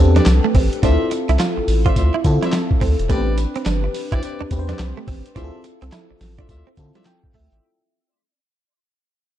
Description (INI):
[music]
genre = R&B, new jack swing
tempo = 106 BPM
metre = 4/4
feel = swing 63% on 16ths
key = unclear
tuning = A4 = 440 Hz
[part]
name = FM electric piano with soft pad layer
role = accompaniment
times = 0.0-7.6 s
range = B3 to G5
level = -23 LUFS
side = left 2 dB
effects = chorus
[part]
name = round analog bass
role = bass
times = 0.0-7.6 s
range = E1 to D3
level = -18 LUFS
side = equal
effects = none
[part]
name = direct-recorded clean electric guitar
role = riff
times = 0.2-7.5 s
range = G3 to F4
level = -26 LUFS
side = right 8 dB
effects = lush chorus
[part]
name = dark horn section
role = stabs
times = 0.2-7.1 s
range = F4 to E5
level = -31 LUFS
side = left 2 dB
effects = tape echo
[part]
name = boom bap sampler-style drum kit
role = drums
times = 0.2-7.6 s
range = handclaps, hi-hat, kick drum, snare drum, tambourine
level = -19 LUFS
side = equal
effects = none
[sound]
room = digital ambience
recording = dark, warm production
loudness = -16 LUFS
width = side -12 dB against mid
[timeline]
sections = 0.0-7.6 A section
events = fade-out 0.0-7.6; FM electric piano fill 6.8-7.6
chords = 0.0 Am11; 0.8 Dm9; 3.1 Am11; 5.4 Dm9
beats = 0.26 | 0.83 1.40 1.96 2.53 | 3.09 3.66 4.23 4.79 | 5.36 5.92 6.49 7.06